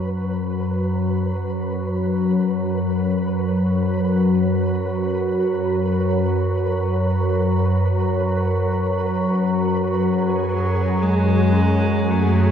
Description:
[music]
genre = dark ambient drone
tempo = free time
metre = none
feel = none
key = unclear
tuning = A4 = 440 Hz
[part]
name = organ-like drone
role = drone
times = 0.0-12.5 s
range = F#2 to F#3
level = -18 LUFS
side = equal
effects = ensemble chorus, built-in reverb
[part]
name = flickering grainy texture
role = texture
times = 0.0-12.5 s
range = G#4 to B4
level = -31 LUFS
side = equal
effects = built-in reverb, shimmer reverb
[part]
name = rich cello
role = melody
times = 10.5-12.5 s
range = F#3 to A3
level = -22 LUFS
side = equal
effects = shimmer reverb
[part]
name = dark detuned synth bell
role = arpeggios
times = 11.5-12.5 s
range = C#4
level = -30 LUFS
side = right 1 dB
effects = chorus, tremolo, shimmer reverb
[sound]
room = wet huge ambient reverb, RT60 7.1 s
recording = dark, warm production, nothing above 10.6 kHz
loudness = -18 LUFS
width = side -8 dB against mid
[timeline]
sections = 0.0-12.5 A section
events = fade-in on synth texture 0.0-12.5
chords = 0.0 F#sus2

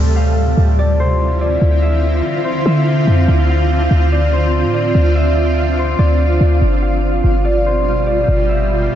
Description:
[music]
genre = hip hop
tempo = 144 BPM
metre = 4/4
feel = half-time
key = D dorian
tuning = A4 = 440 Hz
[part]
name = Celtic harp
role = melody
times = 0.0-9.0 s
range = C5 to F5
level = -21 LUFS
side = left 2 dB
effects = low-pass filter, digital delay
[part]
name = granular cloud pad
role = sustained chords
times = 0.0-9.0 s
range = B2 to F4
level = -18 LUFS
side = right 1 dB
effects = built-in reverb
[part]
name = clean 808-style bass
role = bass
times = 0.0-8.9 s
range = G1 to D3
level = -14 LUFS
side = equal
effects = none
[sound]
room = light reverb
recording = nothing above 7.7 kHz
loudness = -12 LUFS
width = side -10 dB against mid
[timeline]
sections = 0.0-9.0 A section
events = none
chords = 0.0 Dm9; 6.6 G7

